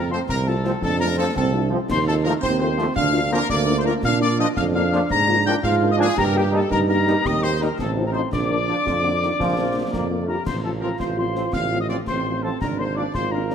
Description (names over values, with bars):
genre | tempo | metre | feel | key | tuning
military-style march for wind band | 112 BPM (dotted quarters) | 6/8 | straight | Bb major | A4 = 439 Hz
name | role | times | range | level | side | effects
mellow trumpet section | melody | 0.0-13.5 s | G4 to Bb5 | -27 LUFS | equal | none
mellow euphonium | second line | 0.0-13.5 s | Bb3 to G4 | -26 LUFS | right 5 dB | none
mellow wooden piccolo | second line | 0.0-13.5 s | G5 to Bb6 | -27 LUFS | left 6 dB | none
mellow tuba | bass | 0.0-13.5 s | Ab1 to Bb2 | -24 LUFS | right 2 dB | none
dark French horn section | accompaniment | 0.1-13.5 s | F3 to G4 | -29 LUFS | left 6 dB | none
dark trombone section | sustained chords | 0.1-13.5 s | D3 to Eb4 | -29 LUFS | right 1 dB | none
concert snare drum, concert bass drum and clash cymbals | drums | 0.3-13.5 s | none | -31 LUFS | left 2 dB | none
room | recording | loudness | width
moderate scoring stage reverb, RT60 1.8 s | none | -18 LUFS | side -8 dB against mid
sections
0.0-10.5 A section; 10.5-13.5 A section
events
none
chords
0.0 F; 1.9 F7/Eb; 3.0 Bb/D; 4.0 Bb; 5.1 Bb7/Ab; 6.2 Eb/G; 7.3 Eb; 7.8 F7/A; 8.3 Bb; 10.5 F/A; 12.6 Bb7/Ab